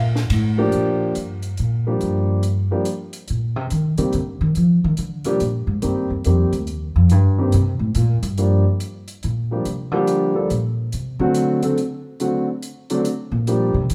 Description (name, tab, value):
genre	jazz piano trio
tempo	141 BPM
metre	3/4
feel	swing 65% on 8ths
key	G minor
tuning	A4 = 436 Hz
part	warm concert grand piano	melody	0.0-13.7 s	D3 to A4	-23 LUFS	equal	none
part	upright bass	bass	0.0-13.9 s	D2 to F3	-21 LUFS	equal	none
part	compact cocktail drum kit	drums	0.2-13.9 s	hi-hat, kick drum, ride cymbal, snare drum	-37 LUFS	equal	none
room	moderate large studio reverb, RT60 1.1 s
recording	band playing live in one room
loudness	-20 LUFS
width	mono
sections	0.7-13.9 A section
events	upright bass solo 0.7-13.9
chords	0.3 D5; 0.7 Gm7; 3.3 Cm7; 4.6 Gm7; 5.8 Cm7; 8.4 Gm7; 10.9 D7